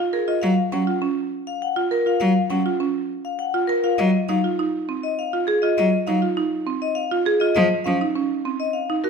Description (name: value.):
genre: classical, minimalist pattern music.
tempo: 101 BPM.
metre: 3/4.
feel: straight.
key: Ab mixolydian.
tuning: A4 = 444 Hz.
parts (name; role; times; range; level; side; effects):
vibraphone with hard mallets; melody; 0.0-9.1 s; Ab4 to Gb5; -24 LUFS; left 9 dB; none.
buzzing marimba with medium hard mallets; arpeggios; 0.0-9.1 s; C4 to Bb4; -23 LUFS; right 6 dB; none.
rich cello; accompaniment; 0.4-8.0 s; F3 to Gb3; -22 LUFS; equal; none.
room: moderate recital hall reverb, RT60 1.4 s.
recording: minimal, uncompressed stereo recording.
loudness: -19 LUFS.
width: side -6 dB against mid.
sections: 0.0-9.1 A section.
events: none.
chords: 0.4 Gbmaj7; 4.0 Ab6; 7.6 Eb7sus2.